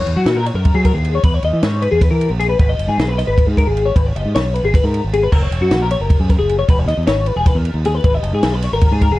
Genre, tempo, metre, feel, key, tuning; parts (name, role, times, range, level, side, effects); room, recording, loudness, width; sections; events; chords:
math rock and midwest emo; 309 BPM (eighths); 7/8; straight; A4 = 440 Hz
electric guitar through a small old amp; accompaniment; 0.0-1.2 s; E3; -36 LUFS; right 7 dB
twelve-string electric guitar; arpeggios; 0.0-9.2 s; F#4 to D#5; -19 LUFS; left 3 dB; ensemble chorus
growling fingered electric bass; bass; 0.0-9.2 s; E1 to F#3; -18 LUFS; equal; overdrive
compact cocktail drum kit; drums; 0.1-9.1 s; crash cymbal, kick drum, ride cymbal, snare drum; -17 LUFS; equal; vintage 12-bit sampler grit
light reverb; dark, warm production, vinyl crackle; -13 LUFS; side -17 dB against mid
0.0-9.2 A section
0.0 F#7; 1.2 Emaj7; 2.6 G#m; 5.3 F#; 6.7 Emaj7; 8.0 G#m